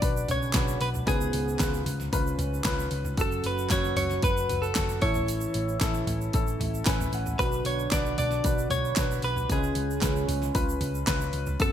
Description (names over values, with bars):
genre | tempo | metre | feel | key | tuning
piano-driven pop | 114 BPM | 4/4 | straight | unclear | A4 = 440 Hz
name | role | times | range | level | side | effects
direct-recorded clean electric guitar | melody | 0.0-11.7 s | G#4 to D5 | -30 LUFS | right 1 dB | wide subtle chorus
warm baby grand piano | accompaniment | 0.0-11.7 s | G#2 to G#5 | -33 LUFS | left 5 dB | lush chorus
hollow-body short-scale picked electric bass | bass | 0.0-11.7 s | F#1 to C#2 | -31 LUFS | equal | none
pop drum kit | drums | 0.0-11.7 s | handclaps, hi-hat, kick drum, snare drum, toms | -29 LUFS | equal | gated reverb
egg shaker | percussion | 0.0-11.7 s | none | -42 LUFS | right 12 dB | none
dark French horn section | second line | 0.3-11.7 s | B2 to F#4 | -36 LUFS | right 6 dB | none
room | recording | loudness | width
light reverb, digital ambience | bright 1980s-style digital production | -24 LUFS | side -10 dB against mid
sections
0.0-11.7 A section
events
grand piano fill 6.3-7.4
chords
0.0 Bm; 1.1 C#7; 3.2 F#m; 5.0 A; 7.4 Bm; 9.5 C#7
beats
0.03 0.55 | 1.08 1.60 2.13 2.65 | 3.18 3.71 4.23 4.76 | 5.29 5.81 6.34 6.87 | 7.39 7.92 8.44 8.97 | 9.49 10.02 10.55 11.07 | 11.60